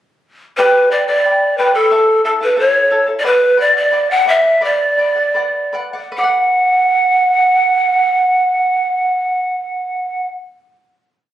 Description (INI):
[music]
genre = andean folk, Andean ensemble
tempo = 72-90 BPM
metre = 2/4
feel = straight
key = B minor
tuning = A4 = 440 Hz
[part]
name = breathy large pan pipes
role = melody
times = 0.6-10.3 s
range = A4 to F#5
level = -12 LUFS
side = right 1 dB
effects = plate reverb
[part]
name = charango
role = accompaniment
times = 0.6-10.8 s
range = E4 to B5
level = -21 LUFS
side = equal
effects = none
[sound]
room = moderate studio reverb, RT60 0.5 s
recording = recorded on a phone in the room, club reverb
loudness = -12 LUFS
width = side -12 dB against mid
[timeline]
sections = 0.6-6.2 A section; 6.2-9.5 final chord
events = slowing down 3.3-6.2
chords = 0.6 G; 1.9 A; 3.3 Bm